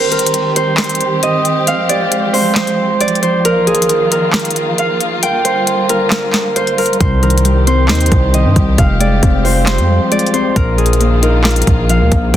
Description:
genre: hip hop, trap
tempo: 135 BPM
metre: 4/4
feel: half-time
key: C minor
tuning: A4 = 439 Hz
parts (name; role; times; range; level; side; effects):
- Celtic harp; melody; 0.0-12.4 s; Ab4 to G5; -15 LUFS; right 1 dB; tape echo
- dark chamber string section; sustained chords; 0.0-12.4 s; D3 to G4; -19 LUFS; right 1 dB; none
- trap drum kit; drums; 0.1-12.4 s; handclaps, hi-hat, kick drum, snare drum; -16 LUFS; equal; none
- soft electric-piano-like synth keys; accompaniment; 7.0-12.4 s; Bb2 to G4; -17 LUFS; left 5 dB; chorus
- distorted 808-style bass; bass; 7.0-12.4 s; F1 to G2; -13 LUFS; equal; distortion
room: digital ambience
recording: dense, heavily limited modern master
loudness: -11 LUFS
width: side -11 dB against mid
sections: 0.0-12.4 A section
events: break 0.0-7.0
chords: 0.0 Cm; 1.7 Fmadd9; 3.5 Bbsus4; 5.2 Gm7; 7.0 Cm; 8.8 Fmadd9; 10.6 Bbsus4

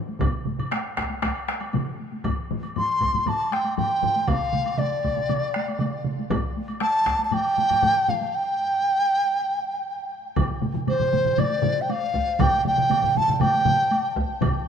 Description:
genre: japanese traditional, taiko drum ensemble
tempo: 118 BPM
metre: 4/4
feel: straight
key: G suspended pentatonic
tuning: A4 = 440 Hz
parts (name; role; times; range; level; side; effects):
- taiko ensemble; percussion; 0.1-14.6 s; none; -32 LUFS; left 1 dB; none
- solo taiko drums; percussion; 0.2-6.2, 10.4-14.5 s; none; -28 LUFS; right 4 dB; none
- taiko ensemble; percussion; 0.2-14.5 s; none; -30 LUFS; left 5 dB; none
- taiko ensemble; percussion; 0.2-7.2, 10.4-14.5 s; none; -28 LUFS; right 1 dB; none
- woodblock; percussion; 0.2-14.5 s; none; -37 LUFS; equal; none
- mellow large dizi; melody; 2.8-14.2 s; C5 to C6; -22 LUFS; equal; none
room: moderate huge ambient reverb, RT60 7.7 s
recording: minimal, uncompressed stereo recording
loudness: -21 LUFS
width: side -8 dB against mid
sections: 0.0-10.4 A section; 10.4-14.7 B section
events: break 8.3-10.4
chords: none

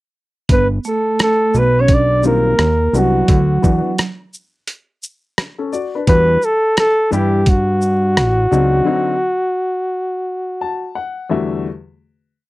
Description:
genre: hip hop, jazz-hop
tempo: 86 BPM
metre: 4/4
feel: swing 62% on 16ths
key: unclear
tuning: A4 = 440 Hz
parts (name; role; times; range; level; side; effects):
- mellow flugelhorn; melody; 0.5-11.0 s; F#4 to D5; -16 LUFS; equal; none
- vibraphone with medium mallets; second line; 0.5-4.0 s; F#3 to D4; -21 LUFS; right 6 dB; none
- fat analog bass; bass; 0.5-8.8 s; G1 to G2; -16 LUFS; equal; none
- boom bap sampler-style drum kit; drums; 0.5-8.7 s; hi-hat, kick drum, rim click, shaker; -16 LUFS; equal; none
- warm upright piano; accompaniment; 2.2-11.7 s; E2 to A5; -20 LUFS; left 5 dB; none
room: little or no reverb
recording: dry, close 1970s-style studio recording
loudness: -13 LUFS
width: side -19 dB against mid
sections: 0.5-11.7 A section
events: upright piano fill 10.3-11.7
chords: 0.5 G; 2.6 D#5; 3.3 D69; 6.1 Em9; 8.2 A6; 8.9 D7b9; 11.0 Em11

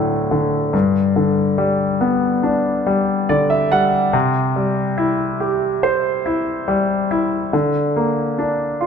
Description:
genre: pop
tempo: 70 BPM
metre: 4/4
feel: straight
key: G major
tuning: A4 = 438 Hz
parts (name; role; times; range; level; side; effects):
- clear concert grand piano; solo; 0.0-8.9 s; D2 to F#5; -16 LUFS; left 1 dB; none
room: moderate scoring stage reverb, RT60 2.2 s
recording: nothing above 10.5 kHz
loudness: -16 LUFS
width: side -6 dB against mid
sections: 0.0-8.9 A section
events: grand piano fill 2.9-4.1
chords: 0.0 D; 0.7 G; 4.1 C; 7.5 Bb/D

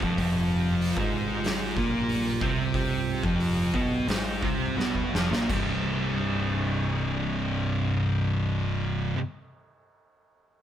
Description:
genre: stoner and doom metal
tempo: 82-96 BPM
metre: 4/4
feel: straight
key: unclear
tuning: A4 = 440 Hz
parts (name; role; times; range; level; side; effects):
- ensemble organ-string; sustained chords; 0.0-9.1 s; C3 to G4; -40 LUFS; right 1 dB; ensemble chorus
- thick fuzz guitar; riff; 0.0-9.2 s; C2 to C4; -29 LUFS; left 5 dB; distortion
- thick fuzz guitar; riff; 0.0-9.2 s; C2 to C4; -29 LUFS; right 5 dB; distortion
- modern bright fingered electric bass; bass; 0.0-9.1 s; C1 to C2; -33 LUFS; equal; overdrive
- oversized low-tuned drum kit; drums; 0.0-5.7 s; crash cymbal, hi-hat, kick drum, snare drum; -32 LUFS; equal; none
room: light reverb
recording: band playing live in one room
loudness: -24 LUFS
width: side -10 dB against mid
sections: 0.0-5.5 A section; 5.5-8.4 B section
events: slowing down 0.2-5.5; drum fill 4.8-5.5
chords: 0.2 F5; 5.5 C5

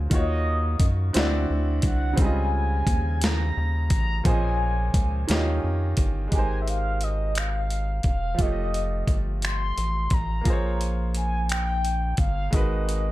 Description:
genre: slow six-eight R&B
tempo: 58 BPM (dotted quarters)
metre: 6/8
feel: straight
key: Ab major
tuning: A4 = 440 Hz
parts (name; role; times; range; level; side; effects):
- clear grand piano; accompaniment; 0.0-13.1 s; Bb2 to Eb5; -30 LUFS; right 1 dB; none
- rubbery square bass; bass; 0.0-13.1 s; Fb1 to Gb2; -26 LUFS; equal; none
- mellow horn-like synth lead; melody; 0.1-13.1 s; Eb5 to C6; -31 LUFS; left 1 dB; chorus, phaser, tape echo
- dusty soul sampler-style drum kit; drums; 0.1-13.0 s; finger snaps, hi-hat, kick drum, snare drum; -24 LUFS; equal; none
room: little or no reverb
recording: none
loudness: -22 LUFS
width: side -16 dB against mid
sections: 0.0-6.3 A section; 6.3-13.1 B section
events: none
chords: 0.1 Ebm7; 1.1 D9; 2.2 Dbmaj9#11; 4.3 Bbm11; 5.3 Eb9; 6.3 Abmaj9; 8.4 F7; 10.5 Bbm9; 12.5 Abm7

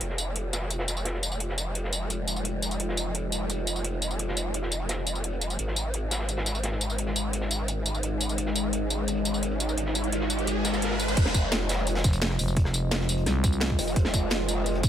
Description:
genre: dark technical drum and bass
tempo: 172 BPM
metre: 4/4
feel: straight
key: F minor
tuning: A4 = 440 Hz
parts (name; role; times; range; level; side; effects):
- deep dark ambient pad; sustained chords; 0.1-14.9 s; Ab3 to Eb5; -33 LUFS; left 1 dB; chorus, built-in reverb, sidechain pumping
- growl bass; bass; 0.0-14.8 s; F1 to Ab1; -30 LUFS; equal; chorus, overdrive, sidechain pumping
- crunchy breakbeat drum kit; drums; 0.0-14.9 s; hi-hat, snare drum; -37 LUFS; equal; high-pass filter on hats, low-pass filter on hats, high-pass filter on snare, low-pass filter on snare, high-pass filter on room, low-pass filter on room
- drum and bass drum kit; drums; 0.0-14.9 s; crash cymbal, hi-hat, rim click, snare drum, tambourine; -30 LUFS; equal; none
- riser; sound effects; 9.5-11.2 s; none; -34 LUFS; right 2 dB; none
- electronic kick drum; drums; 11.2-14.9 s; none; -23 LUFS; equal; overdrive
- growling FM bass; bass; 12.0-14.9 s; F1 to C2; -27 LUFS; equal; none
room: little or no reverb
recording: none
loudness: -25 LUFS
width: side -10 dB against mid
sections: 0.0-11.2 A section; 11.2-14.9 B section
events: filter sweep on ambient pad 0.0-11.2; riser 9.5-11.2; drop 11.2-14.9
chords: 0.0 Fm7; 5.6 Absus4; 11.2 Fm7

